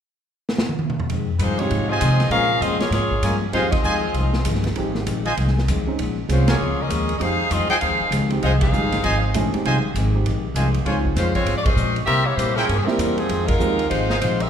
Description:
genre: jazz, big band swing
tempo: 197 BPM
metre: 4/4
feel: swing 62% on 8ths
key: F minor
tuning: A4 = 441 Hz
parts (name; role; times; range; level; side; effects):
- swinging big-band drum kit; drums; 0.5-14.5 s; hi-hat, kick drum, ride cymbal, snare drum, toms; -27 LUFS; equal; none
- vintage hollow-body jazz guitar; accompaniment; 1.1-14.4 s; F2 to E4; -28 LUFS; left 5 dB; none
- upright bass; bass; 1.1-14.5 s; G1 to C3; -22 LUFS; equal; none
- edgy saxophone section; melody; 1.4-14.5 s; F3 to G5; -22 LUFS; equal; none
- warm grand piano; accompaniment; 1.6-14.1 s; C3 to C5; -28 LUFS; right 4 dB; none
- clear trumpet section; stabs; 1.9-14.2 s; Eb4 to Ab5; -27 LUFS; right 1 dB; none
room: moderate recital hall reverb, RT60 1.5 s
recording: recorded in a church or concert hall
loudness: -18 LUFS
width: side -8 dB against mid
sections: 0.0-1.1 A section; 1.1-14.5 B section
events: drum fill 0.5-1.1; band accent 3.7, 6.4, 8.6, 11.6, 13.5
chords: 0.0 N.C.; 1.1 Fm7; 2.3 Bbm7; 3.5 Fm7; 6.0 Bbm7; 7.2 Fm7; 10.9 Dbmaj7; 12.1 C7; 13.3 Fm7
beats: 0.18 0.48 0.79 | 1.09 1.40 1.71 2.01 | 2.32 2.62 2.93 3.23 | 3.54 3.85 4.15 4.46 | 4.76 5.07 5.37 5.68 | 5.98 6.29 6.59 6.90 | 7.20 7.51 7.81 8.12 | 8.42 8.73 9.03 9.34 | 9.64 9.95 10.25 10.56 | 10.86 11.17 11.47 11.78 | 12.08 12.39 12.69 13.00 | 13.30 13.61 13.91 14.22

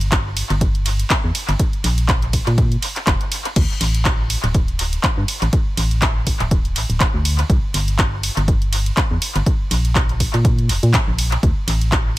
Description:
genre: piano house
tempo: 122 BPM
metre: 4/4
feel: swing 56% on 16ths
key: unclear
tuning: A4 = 440 Hz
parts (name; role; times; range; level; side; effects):
- organ-like FM bass; bass; 0.0-12.2 s; D1 to Bb2; -19 LUFS; equal; sidechain pumping
- garage drum kit; drums; 0.0-12.0 s; crash cymbal, handclaps, hi-hat, ride cymbal; -22 LUFS; equal; dub echo
- electronic kick drum; drums; 0.1-12.0 s; none; -19 LUFS; equal; none
room: little or no reverb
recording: echo-heavy mix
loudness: -16 LUFS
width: side -17 dB against mid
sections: 0.0-12.2 A section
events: none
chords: none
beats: 0.12 0.61 1.10 | 1.59 2.09 2.58 3.07 | 3.56 4.05 4.55 5.04 | 5.53 6.02 6.51 7.00 | 7.50 7.99 8.48 8.97 | 9.46 9.96 10.45 10.94 | 11.43 11.92

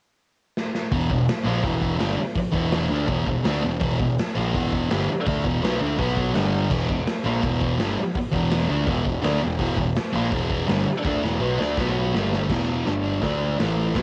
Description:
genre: garage rock duo or trio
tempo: 166 BPM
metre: 4/4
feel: straight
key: E minor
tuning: A4 = 440 Hz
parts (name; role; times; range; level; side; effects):
- raw garage drum kit; drums; 0.6-14.0 s; crash cymbal, hi-hat, kick drum, snare drum; -29 LUFS; equal; cassette tape
- thick fuzz guitar; riff; 0.9-14.0 s; E2 to D4; -25 LUFS; equal; distortion, cassette tape
- growling picked electric bass; bass; 0.9-14.0 s; E1 to D2; -31 LUFS; equal; overdrive
room: little or no reverb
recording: home recording on cassette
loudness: -23 LUFS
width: mono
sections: 0.9-12.5 A section; 12.5-14.0 B section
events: drum fill 0.6-0.9, 11.0-12.5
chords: 0.0 N.C.; 0.9 Em; 6.0 B5; 6.3 G5; 6.7 Em; 11.8 B5; 12.1 G5; 12.5 E5; 12.8 G5; 13.2 D5; 13.6 A5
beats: 0.19 0.55 | 0.92 1.28 1.64 2.00 | 2.36 2.72 3.08 3.45 | 3.81 4.17 4.53 4.89 | 5.25 5.62 5.98 6.34 | 6.70 7.06 7.42 7.79 | 8.15 8.51 8.87 9.23 | 9.59 9.95 10.31 10.67 | 11.04 11.40 11.76 12.12 | 12.49 12.85 13.21 13.58 | 13.94

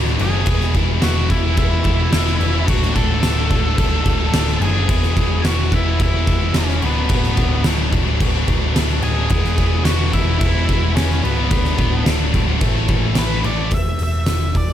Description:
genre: quiet-loud alternative rock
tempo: 109 BPM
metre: 4/4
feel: straight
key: unclear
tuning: A4 = 440 Hz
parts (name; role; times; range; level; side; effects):
- heavy high-gain guitar; riff; 0.0-13.7 s; B1 to A3; -29 LUFS; right 1 dB; distortion
- scooped high-gain guitar; riff; 0.0-13.7 s; B1 to A4; -28 LUFS; right 15 dB; distortion
- tight distorted guitar; riff; 0.0-13.7 s; B1 to A4; -25 LUFS; left 12 dB; distortion
- picked electric bass; bass; 0.0-14.7 s; C#1 to A1; -19 LUFS; equal; none
- oversized low-tuned drum kit; drums; 0.1-14.7 s; crash cymbal, hi-hat, kick drum, snare drum; -19 LUFS; equal; none
- octave-fuzz lead guitar; melody; 0.2-14.7 s; B3 to A5; -25 LUFS; left 1 dB; distortion, slapback echo
room: little or no reverb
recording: none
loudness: -15 LUFS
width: side -11 dB against mid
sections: 0.0-13.7 A section; 13.7-14.7 B section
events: none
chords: 0.5 E; 2.7 D; 4.9 E; 6.8 Bm7/D; 9.3 E; 11.5 D6; 12.6 A; 13.7 N.C.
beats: | 0.47 1.02 1.57 2.13 | 2.68 3.23 3.78 4.33 | 4.89 5.44 5.99 6.54 | 7.10 7.65 8.20 8.75 | 9.30 9.86 10.41 10.96 | 11.51 12.06 12.62 13.17 | 13.72 14.27

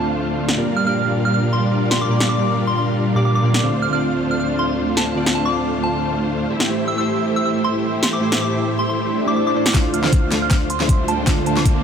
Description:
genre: future bass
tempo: 157 BPM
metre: 4/4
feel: swing 54% on 16ths, half-time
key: D minor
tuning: A4 = 439 Hz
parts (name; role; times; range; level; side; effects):
- soft synth bell; melody; 0.0-11.7 s; A5 to F6; -24 LUFS; equal; chorus, phaser, sidechain pumping, low-pass filter, dub echo
- glassy digital keys; accompaniment; 0.0-11.8 s; Bb2 to D5; -22 LUFS; right 2 dB; chorus, sidechain pumping
- warm studio string section; sustained chords; 0.0-11.8 s; D2 to D5; -29 LUFS; left 2 dB; sidechain pumping
- dense compressed supersaw; riff; 0.0-11.8 s; G3 to G5; -22 LUFS; equal; sidechain pumping, low-pass filter
- pop drum kit; drums; 0.5-11.7 s; hi-hat, snare drum; -22 LUFS; left 1 dB; high-pass filter on snare, high-pass filter on hats
- swell and riser; sound effects; 9.1-11.8 s; none; -27 LUFS; left 2 dB; none
- electronic kick drum; drums; 9.7-11.7 s; none; -16 LUFS; left 1 dB; none
room: light reverb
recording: none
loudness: -16 LUFS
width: side -7 dB against mid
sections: 0.0-9.7 A section; 9.7-11.8 B section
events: swell 9.1-9.7; build-up 9.7-11.8; drum fill 9.7-11.8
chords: 0.0 Dm7; 0.6 Bb6; 3.6 Dm7; 6.5 Am7; 9.7 Dm7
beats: 0.19 | 0.57 0.96 1.34 1.72 | 2.10 2.48 2.87 3.25 | 3.63 4.01 4.40 4.78 | 5.16 5.54 5.92 6.31 | 6.69 7.07 7.45 7.83 | 8.22 8.60 8.98 9.36 | 9.75 10.13 10.51 10.89 | 11.28 11.66

